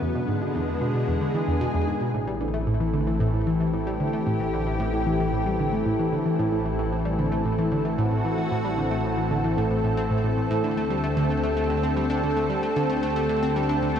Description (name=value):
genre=ambient, sequencer-driven space music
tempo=113 BPM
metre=4/4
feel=straight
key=A dorian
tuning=A4 = 437 Hz
part: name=lush unison pad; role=sustained chords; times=0.0-14.0 s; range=D3 to A4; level=-25 LUFS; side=equal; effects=chorus
part: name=analog pluck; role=riff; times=0.0-14.0 s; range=E2 to D4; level=-26 LUFS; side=equal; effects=chorus, cassette tape, ping-pong delay
part: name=fat analog bass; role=bass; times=2.1-14.0 s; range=A1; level=-31 LUFS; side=equal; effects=tube saturation
room=moderate plate reverb, RT60 3.1 s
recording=dark, warm production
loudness=-22 LUFS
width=side -8 dB against mid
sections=0.0-2.1 A section; 2.1-14.0 B section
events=filter sweep on synth arpeggio sound 0.0-2.1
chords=0.0 E7; 2.1 Am7; 10.6 D7sus4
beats=| 0.02 0.55 1.08 1.61 | 2.14 2.67 3.20 3.73 | 4.27 4.80 5.33 5.86 | 6.39 6.92 7.45 7.98 | 8.51 9.04 9.57 10.11 | 10.64 11.17 11.70 12.23 | 12.76 13.29 13.82